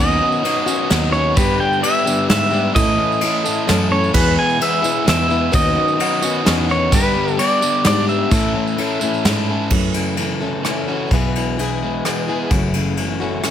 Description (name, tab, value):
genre	folk rock and heartland rock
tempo	129 BPM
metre	3/4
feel	straight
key	unclear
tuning	A4 = 440 Hz
part	pedal steel guitar	melody	0.0-9.2 s	B4 to G#5	-19 LUFS	right 1 dB	none
part	picked plugged-in steel-string acoustic guitar	accompaniment	0.0-13.5 s	F#2 to A4	-23 LUFS	left 6 dB	none
part	crunchy overdriven guitar	riff	0.0-13.5 s	E2 to A4	-22 LUFS	right 1 dB	none
part	fingered electric bass	bass	0.0-13.4 s	F#1 to A2	-21 LUFS	right 1 dB	none
part	tambourine	percussion	0.3-9.4 s	none	-30 LUFS	right 8 dB	none
part	soft brush drum kit	drums	0.4-13.5 s	crash cymbal, kick drum, ride cymbal, rim click, snare drum	-21 LUFS	equal	none
room	light reverb, small room ambience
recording	none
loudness	-15 LUFS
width	side -10 dB against mid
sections	0.0-9.7 A section; 9.7-13.5 B section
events	none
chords	0.0 Badd9/D#; 1.4 G; 2.8 A; 4.1 E; 5.5 Badd9/D#; 6.9 G; 8.3 A; 9.7 F#m7; 11.1 E/B; 12.5 F#m7